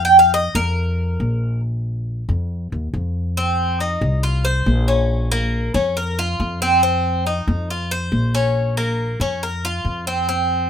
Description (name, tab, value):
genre	latin, Cuban son and guajira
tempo	139 BPM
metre	4/4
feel	straight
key	unclear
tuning	A4 = 437 Hz
part	Cuban tres	arpeggios	0.0-10.7 s	Bb3 to G5	-18 LUFS	right 1 dB	none
part	upright bass	bass	0.0-10.7 s	Bb1 to F2	-21 LUFS	left 1 dB	none
room	moderate studio ambience, RT60 0.5 s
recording	minimal, uncompressed stereo recording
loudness	-17 LUFS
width	side -8 dB against mid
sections	0.0-3.4 A section; 3.4-10.7 B section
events	Cuban tres solo 0.0-3.4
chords	0.0 Bbsus4; 1.6 Bb5; 3.4 F5; 5.1 Bbm; 6.8 F5; 8.6 Bbm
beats	0.34 0.77 1.21 | 1.64 2.07 2.50 2.94 | 3.37 3.80 4.24 4.67 | 5.10 5.53 5.96 6.40 | 6.83 7.26 7.69 8.12 | 8.56 8.99 9.42 9.85 | 10.28